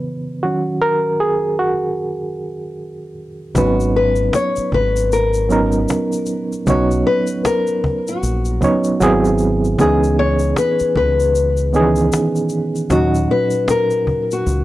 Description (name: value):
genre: lo-fi hip hop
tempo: 77 BPM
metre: 4/4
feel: swing 62% on 16ths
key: G# minor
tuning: A4 = 440 Hz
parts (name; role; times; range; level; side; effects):
- barky reed electric piano; accompaniment; 0.0-14.6 s; A#2 to C#5; -18 LUFS; right 2 dB; overdrive, fast tremolo
- nylon-string guitar; melody; 3.6-14.6 s; F#4 to C#5; -19 LUFS; left 3 dB; tape echo
- deep dub fingered electric bass; bass; 3.6-14.6 s; G#1 to D#2; -19 LUFS; equal; none
- cajon; drums; 3.6-14.6 s; none; -22 LUFS; equal; none
- egg shaker; percussion; 3.6-14.6 s; none; -34 LUFS; left 5 dB; none
room: light reverb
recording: dry, gritty hardware recording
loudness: -14 LUFS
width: side -16 dB against mid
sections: 0.0-3.5 A section; 3.5-14.6 B section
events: reed electric piano solo 0.0-3.5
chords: 0.4 D#m7; 3.5 G#m11; 6.7 Bmaj9; 9.0 G#7alt; 9.8 C#m9; 12.9 D#m7